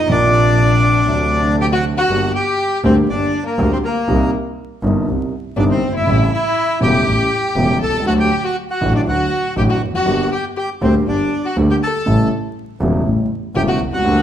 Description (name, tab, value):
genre	tango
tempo	120 BPM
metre	4/4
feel	rubato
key	G harmonic minor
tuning	A4 = 440 Hz
part	bandoneon	melody	0.0-14.2 s	Bb3 to A5	-20 LUFS	right 1 dB	none
part	warm violin	second line	0.0-14.2 s	Bb3 to A4	-21 LUFS	left 3 dB	none
part	dark baby grand piano	accompaniment	0.0-14.2 s	E1 to G4	-19 LUFS	equal	none
part	clear double bass	bass	0.0-14.2 s	E1 to D2	-19 LUFS	equal	none
room	wet large studio reverb, RT60 1.2 s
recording	minimal, uncompressed stereo recording, vinyl crackle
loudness	-14 LUFS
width	side -10 dB against mid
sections	0.0-2.1 A section; 2.1-14.2 B section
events	none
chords	0.1 Bbadd9; 1.1 D7; 2.1 Gm; 4.1 Cm7; 6.1 A7; 8.1 D; 10.1 Gm; 12.1 A7